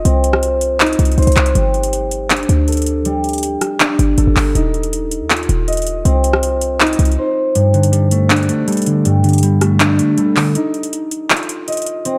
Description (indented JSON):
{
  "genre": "hip hop, trap",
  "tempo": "160 BPM",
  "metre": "4/4",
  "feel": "half-time",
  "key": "unclear",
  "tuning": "A4 = 445 Hz",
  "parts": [
    { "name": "concert harp", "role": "arpeggios", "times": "0.0-12.2 s", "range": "G3 to Eb5", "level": "-20 LUFS", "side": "equal", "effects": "low-pass filter, delay" },
    { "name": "short 808-style bass", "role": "bass", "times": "0.0-7.2 s", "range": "Eb1 to Eb2", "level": "-18 LUFS", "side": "equal", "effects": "none" },
    { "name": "trap drum kit", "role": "drums", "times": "0.1-12.1 s", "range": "handclaps, hi-hat, rim click", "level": "-20 LUFS", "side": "equal", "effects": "overdrive" },
    { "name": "mellow electric guitar", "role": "accompaniment", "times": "7.6-10.6 s", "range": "G2 to D4", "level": "-15 LUFS", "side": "equal", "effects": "low-pass filter" }
  ],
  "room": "light reverb",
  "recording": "none",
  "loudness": "-15 LUFS",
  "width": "mono",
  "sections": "0.0-12.2 A section",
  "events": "break 7.2-7.6, 10.6-12.2; kick muted 7.6-12.2",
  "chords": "0.1 Cm; 1.6 Gsus2; 4.6 Ebsus2; 6.1 Cm; 7.6 Gsus2; 10.6 Ebsus2",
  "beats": "| 0.05 0.43 0.80 1.18 | 1.55 1.93 2.30 2.68 | 3.05 3.43 3.80 4.18 | 4.55 4.93 5.30 5.68 | 6.05 6.43 6.80 7.18 | 7.55 7.93 8.30 8.68 | 9.05 9.43 9.80 10.18 | 10.55 10.93 11.30 11.68 | 12.05"
}